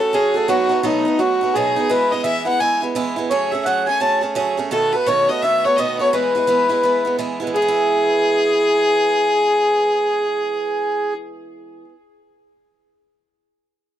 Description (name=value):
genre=celtic folk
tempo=170 BPM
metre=4/4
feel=swing 61% on 8ths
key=E major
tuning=A4 = 441 Hz
part: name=mellow accordion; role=melody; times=0.0-11.1 s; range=D#4 to A5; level=-18 LUFS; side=equal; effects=none
part: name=bright fiddle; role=second line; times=0.0-11.1 s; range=D#4 to A5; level=-23 LUFS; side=left 5 dB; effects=none
part: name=picked swing-style acoustic guitar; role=accompaniment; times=0.0-11.9 s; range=B2 to G#4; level=-23 LUFS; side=right 4 dB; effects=none
room=light reverb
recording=dry, close 1970s-style studio recording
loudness=-16 LUFS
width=side -11 dB against mid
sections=0.0-7.6 A section; 7.6-10.4 B section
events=none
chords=0.5 B7; 1.9 E; 3.3 F#madd9; 4.7 B7; 6.1 E